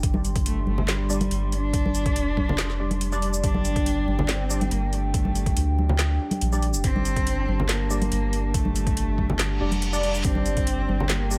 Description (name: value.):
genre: deep dubstep.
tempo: 141 BPM.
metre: 4/4.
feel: half-time.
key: G minor.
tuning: A4 = 440 Hz.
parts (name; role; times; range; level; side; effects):
dark analog pad; sustained chords; 0.0-11.4 s; D4 to C6; -36 LUFS; equal; chorus.
soft dub sub bass; bass; 0.0-11.4 s; F1 to D2; -28 LUFS; equal; none.
electronic kick drum; drums; 0.0-10.7 s; none; -28 LUFS; equal; overdrive.
garage drum kit; drums; 0.0-11.4 s; handclaps, hi-hat, shaker, snare drum; -32 LUFS; equal; overdrive.
congas; percussion; 0.1-11.1 s; none; -33 LUFS; equal; none.
warm cello; melody; 0.5-11.4 s; G3 to D4; -33 LUFS; equal; dub echo.
overdriven tine electric piano; stabs; 1.1-11.4 s; G3 to D5; -34 LUFS; equal; ensemble chorus, dub echo.
reverse cymbal; sound effects; 9.6-10.2 s; none; -35 LUFS; equal; none.
room: little or no reverb.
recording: none.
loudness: -24 LUFS.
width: mono.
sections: 0.0-11.4 A section.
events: reverse cymbal 9.6-10.2.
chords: 0.0 G5.